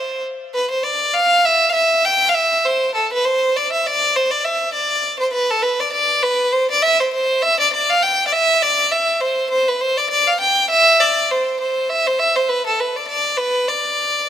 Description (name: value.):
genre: celtic folk.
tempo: 201 BPM.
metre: 4/4.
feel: swing 57% on 8ths.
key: D dorian.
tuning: A4 = 440 Hz.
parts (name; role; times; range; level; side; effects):
bright violin; solo; 0.0-14.3 s; A4 to G5; -15 LUFS; equal; none.
room: moderate lush hall reverb, RT60 3.0 s.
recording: rough home demo mix.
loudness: -15 LUFS.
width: side -9 dB against mid.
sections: 0.0-5.3 A section; 5.3-14.3 B section.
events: none.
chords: none.